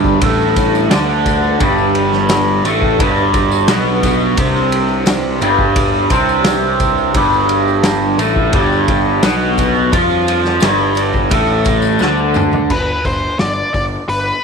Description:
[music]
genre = psychedelic rock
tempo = 86 BPM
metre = 4/4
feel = straight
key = G mixolydian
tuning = A4 = 440 Hz
[part]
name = string machine, violins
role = sustained chords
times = 0.0-12.7 s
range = G3 to B4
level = -24 LUFS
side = right 10 dB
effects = ensemble chorus
[part]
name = raw garage guitar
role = riff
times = 0.0-12.7 s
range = G2 to F4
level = -14 LUFS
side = equal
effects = overdrive, phaser
[part]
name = fuzz picked electric bass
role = bass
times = 0.0-14.3 s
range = G1 to F2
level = -20 LUFS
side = left 1 dB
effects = overdrive
[part]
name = vintage drum kit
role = drums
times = 0.0-14.2 s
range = crash cymbal, hi-hat, kick drum, ride cymbal, snare drum, toms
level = -18 LUFS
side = left 1 dB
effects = none
[part]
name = tambourine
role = percussion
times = 0.1-12.6 s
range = none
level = -35 LUFS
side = left 17 dB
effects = none
[part]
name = octave-fuzz lead guitar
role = melody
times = 12.7-14.4 s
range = B4 to D5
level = -17 LUFS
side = left 1 dB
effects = wah, distortion, slapback echo
[sound]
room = light reverb, studio ambience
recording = 1960s-style stereo with parts hard left and right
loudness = -12 LUFS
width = side -5 dB against mid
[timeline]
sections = 0.0-12.7 A section; 12.7-14.4 B section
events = drum fill 12.0-12.7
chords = 0.0 G

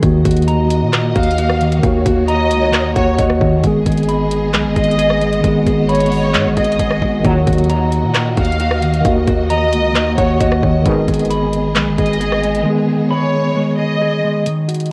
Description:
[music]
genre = hip hop, trap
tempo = 133 BPM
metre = 4/4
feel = half-time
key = Eb minor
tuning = A4 = 440 Hz
[part]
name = mellow tine electric piano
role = accompaniment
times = 0.0-14.5 s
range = Eb3 to Gb5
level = -20 LUFS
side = equal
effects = low-pass filter, cassette tape
[part]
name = warm studio string section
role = sustained chords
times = 0.0-14.4 s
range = Bb3 to Eb5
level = -26 LUFS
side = equal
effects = cassette tape
[part]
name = clean electric guitar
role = arpeggios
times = 0.0-14.9 s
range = Eb3 to Cb6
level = -22 LUFS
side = equal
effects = subtle chorus, low-pass filter, cassette tape, analog delay
[part]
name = distorted 808-style bass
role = bass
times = 0.0-12.6 s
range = Ab1 to Bb2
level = -22 LUFS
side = equal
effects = distortion
[part]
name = trap drum kit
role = drums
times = 0.0-14.9 s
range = handclaps, hi-hat, kick drum, rim click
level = -22 LUFS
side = equal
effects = none
[part]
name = warm symphonic violin section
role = second line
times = 1.2-14.4 s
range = Db5 to F5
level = -22 LUFS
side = equal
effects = cassette tape, analog delay
[part]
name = mellow brass ensemble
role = stabs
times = 7.2-7.7, 10.9-11.3 s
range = Ab2 to Gb3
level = -26 LUFS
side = equal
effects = cassette tape, analog delay
[sound]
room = light reverb, digital ambience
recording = home recording on cassette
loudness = -15 LUFS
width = mono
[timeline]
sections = 0.0-14.5 A section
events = drums muted 12.7-14.5; break 14.5-14.9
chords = 0.0 Ebm; 3.6 Abm; 7.2 Ebm; 10.9 Abm

